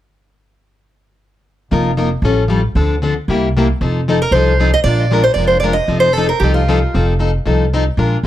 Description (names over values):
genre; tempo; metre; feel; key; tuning
acoustic string swing (jazz manouche); 230 BPM; 4/4; swing 57% on 8ths; F mixolydian; A4 = 438 Hz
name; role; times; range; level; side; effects
picked plugged-in steel-string acoustic guitar; accompaniment; 1.7-8.3 s; C3 to Bb4; -17 LUFS; left 3 dB; none
upright bass; bass; 1.7-8.3 s; F1 to D2; -16 LUFS; equal; none
picked steel-string acoustic guitar; melody; 4.2-7.0 s; F4 to Eb5; -15 LUFS; right 2 dB; plate reverb, tape echo
room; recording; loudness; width
light reverb; dark, warm production; -12 LUFS; side -13 dB against mid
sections
1.7-3.8 A section; 3.8-8.3 B section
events
none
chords
1.7 F7sus4; 2.2 Aaug7; 2.8 Dm7; 3.3 C7; 3.8 F7; 4.9 Bb7; 5.9 F7